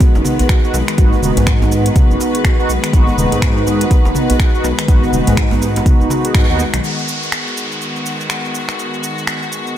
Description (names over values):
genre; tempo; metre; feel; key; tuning
afro house; 123 BPM; 4/4; swing 60% on 16ths; G# minor pentatonic; A4 = 440 Hz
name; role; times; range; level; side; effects
rich studio string section; sustained chords; 0.0-9.8 s; D#3 to B4; -23 LUFS; left 2 dB; sidechain pumping
marimba with soft mallets; arpeggios; 0.0-6.8 s; D#3 to G#4; -22 LUFS; left 1 dB; sidechain pumping, ping-pong delay
mellow synth brass; stabs; 0.0-6.6 s; B3 to F#4; -20 LUFS; right 2 dB; chorus, phaser, sidechain pumping, ping-pong delay
afro-pop drum kit; drums; 0.0-9.7 s; finger snaps, hi-hat, shaker, toms; -22 LUFS; equal; none
electronic kick drum; drums; 0.0-6.5 s; none; -12 LUFS; equal; none
djembe; percussion; 0.0-6.7 s; none; -22 LUFS; equal; none
dark detuned saw bass; bass; 0.2-6.8 s; D#1 to G#2; -19 LUFS; equal; tube saturation, sidechain pumping
downlifter; sound effects; 6.8-9.8 s; none; -25 LUFS; equal; none
room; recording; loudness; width
digital ambience; none; -12 LUFS; side -11 dB against mid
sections
0.0-6.8 A section; 6.8-9.8 B section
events
band accent 6.3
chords
0.0 G#m7